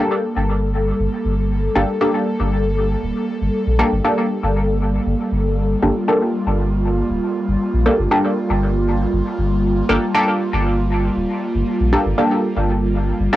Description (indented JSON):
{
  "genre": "dub techno",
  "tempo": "118 BPM",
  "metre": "4/4",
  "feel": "straight",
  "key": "G minor",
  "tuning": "A4 = 441 Hz",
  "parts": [
    { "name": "airy breathy pad", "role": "sustained chords", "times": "0.0-13.4 s", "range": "G3 to A4", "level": "-21 LUFS", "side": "equal", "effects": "chorus, cassette tape" },
    { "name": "filtered dub chord stab", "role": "stabs", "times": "0.0-13.4 s", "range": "Bb3 to A4", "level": "-20 LUFS", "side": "equal", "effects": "chorus, phaser, cassette tape, dub echo" },
    { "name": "soft dub sub bass", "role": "bass", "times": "0.4-13.3 s", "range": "D1 to Bb1", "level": "-20 LUFS", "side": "equal", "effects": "tube saturation" }
  ],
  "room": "light reverb",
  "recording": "home recording on cassette",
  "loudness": "-16 LUFS",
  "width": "side -14 dB against mid",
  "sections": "0.0-13.4 A section",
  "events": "none",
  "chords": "0.0 Gmadd9"
}